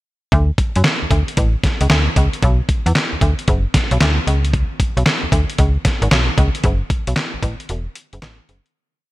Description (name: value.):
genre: R&B, new jack swing.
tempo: 114 BPM.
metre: 4/4.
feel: swing 65% on 16ths.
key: unclear.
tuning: A4 = 441 Hz.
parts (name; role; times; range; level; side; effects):
slap-like FM bass; bass; 0.3-8.6 s; E1 to F#2; -16 LUFS; equal; none.
dusty soul sampler-style drum kit; drums; 0.3-8.7 s; handclaps, hi-hat, kick drum, snare drum; -17 LUFS; equal; gated reverb.
room: light reverb, digital ambience.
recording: bright 1980s-style digital production.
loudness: -14 LUFS.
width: side -18 dB against mid.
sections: 0.3-8.7 breakdown.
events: fade-out 6.6-8.7; break 7.7-8.7.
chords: none.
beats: | 0.32 0.85 1.38 1.90 | 2.43 2.96 3.48 4.01 | 4.54 5.06 5.59 6.11 | 6.64 7.17 7.69 8.22.